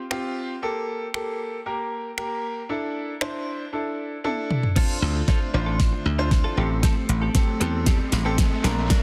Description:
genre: dance-pop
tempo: 116 BPM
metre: 4/4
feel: straight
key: unclear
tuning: A4 = 440 Hz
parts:
  - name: clear concert grand piano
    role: accompaniment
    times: 0.1-9.0 s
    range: Bb3 to C5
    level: -31 LUFS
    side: equal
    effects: sidechain pumping
  - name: pop drum kit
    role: drums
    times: 0.1-9.0 s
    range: crash cymbal, finger snaps, hi-hat, kick drum, snare drum, toms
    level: -24 LUFS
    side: equal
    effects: soft clipping on snare
  - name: glassy FM pad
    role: sustained chords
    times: 5.4-9.0 s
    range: D3 to E5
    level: -36 LUFS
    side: equal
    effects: none
  - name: direct-recorded clean electric guitar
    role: riff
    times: 4.8-9.0 s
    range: C4 to Bb4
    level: -36 LUFS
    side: equal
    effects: analog chorus
  - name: riser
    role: sound effects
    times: 6.5-9.0 s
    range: none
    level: -40 LUFS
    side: equal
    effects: none
  - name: dry thumbed slap bass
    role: bass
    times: 5.0-9.0 s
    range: A1 to E2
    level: -26 LUFS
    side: equal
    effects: sidechain pumping
room: light reverb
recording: dense, heavily limited modern master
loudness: -24 LUFS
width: mono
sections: 0.0-4.8 A section; 4.8-9.0 B section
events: drum fill 4.2-4.8, 4.8-9.0; build-up 4.8-9.0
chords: 0.0 Csus4; 0.6 Gmadd9; 2.7 Asus4; 4.8 Dm7; 6.6 Am7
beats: 0.11 | 0.63 1.14 1.66 2.18 | 2.69 3.21 3.73 4.25 | 4.76 5.28 5.80 6.32 | 6.83 7.35 7.87 8.38 | 8.90

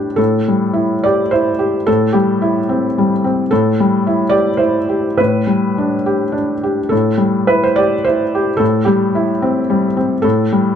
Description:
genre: neoclassical minimalist piano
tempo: 108 BPM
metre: 3/4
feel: rubato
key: A minor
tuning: A4 = 440 Hz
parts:
  - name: felt-muted upright piano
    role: solo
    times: 0.0-10.8 s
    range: A2 to D5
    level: -13 LUFS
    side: equal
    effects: none
room: moderate studio reverb, RT60 0.6 s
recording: dark, warm production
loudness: -13 LUFS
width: side -8 dB against mid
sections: 0.2-10.8 A section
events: none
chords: 0.2 Am7; 1.9 C/A; 3.5 Am7; 5.2 G/A; 6.9 Am7; 8.6 C/A; 10.2 A5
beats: | 0.18 0.76 1.32 | 1.87 2.41 2.95 | 3.50 4.04 4.60 | 5.18 5.77 6.34 | 6.92 7.48 8.05 | 8.60 9.15 9.69 | 10.24

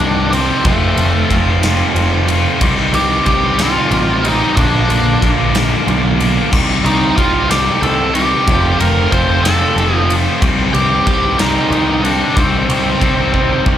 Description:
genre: quiet-loud alternative rock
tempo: 62 BPM (dotted quarters)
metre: 6/8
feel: straight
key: C dorian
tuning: A4 = 440 Hz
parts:
  - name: octave-fuzz lead guitar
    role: melody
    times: 0.0-13.6 s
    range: A3 to C6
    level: -17 LUFS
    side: equal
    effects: distortion, slapback echo
  - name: distorted electric guitar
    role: riff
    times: 0.0-13.8 s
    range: F2 to G4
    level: -17 LUFS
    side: left 6 dB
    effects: distortion, slapback echo
  - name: thick fuzz guitar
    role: riff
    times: 0.0-13.8 s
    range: Bb2 to G4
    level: -21 LUFS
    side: right 12 dB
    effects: distortion, slapback echo
  - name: growling picked electric bass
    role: bass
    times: 0.0-13.8 s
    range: F1 to C2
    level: -17 LUFS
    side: equal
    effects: overdrive
  - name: huge arena drum kit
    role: drums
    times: 0.0-13.8 s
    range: crash cymbal, kick drum, ride cymbal, snare drum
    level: -19 LUFS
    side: equal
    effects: none
room: light reverb, small room ambience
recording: live gig heard through the venue's PA, club reverb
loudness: -11 LUFS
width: side -10 dB against mid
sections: 0.0-13.8 A section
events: drum fill 13.3-13.8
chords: 0.0 Cmadd9; 0.7 F; 2.6 Cm; 4.6 Bb; 6.5 Cm; 8.5 Fadd9; 10.4 Cmadd9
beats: | 0.65 1.63 | 2.61 3.59 | 4.57 5.54 | 6.52 7.50 | 8.47 9.44 | 10.42 11.39 | 12.36 13.34

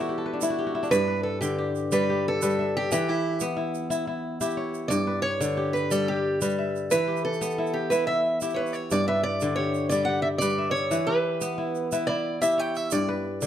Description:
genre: west african traditional, West African string and xylophone music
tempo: 120 BPM (dotted quarters)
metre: 12/8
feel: straight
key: G lydian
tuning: A4 = 440 Hz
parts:
  - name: kora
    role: arpeggios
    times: 0.0-13.5 s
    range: G2 to E5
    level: -26 LUFS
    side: left 2 dB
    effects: none
  - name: tube shaker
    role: percussion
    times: 0.4-13.5 s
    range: none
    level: -36 LUFS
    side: right 11 dB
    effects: none
  - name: picked acoustic archtop guitar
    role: melody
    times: 0.9-13.1 s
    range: E4 to G5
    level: -26 LUFS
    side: right 2 dB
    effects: none
room: light reverb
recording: close, detailed microphones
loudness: -23 LUFS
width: side -10 dB against mid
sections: 0.9-13.5 A section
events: kora fill 0.0-0.9; steel-string acoustic guitar solo 0.9-13.5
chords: 0.0 Em; 0.9 G; 2.9 Em; 4.9 G; 6.9 Em; 8.9 G; 10.9 Em; 12.9 G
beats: 0.41 | 0.91 1.41 1.91 2.41 | 2.91 3.40 3.90 4.41 | 4.90 5.40 5.90 6.40 | 6.91 7.41 7.91 8.41 | 8.91 9.41 9.91 10.41 | 10.91 11.41 11.91 12.41 | 12.91 13.41

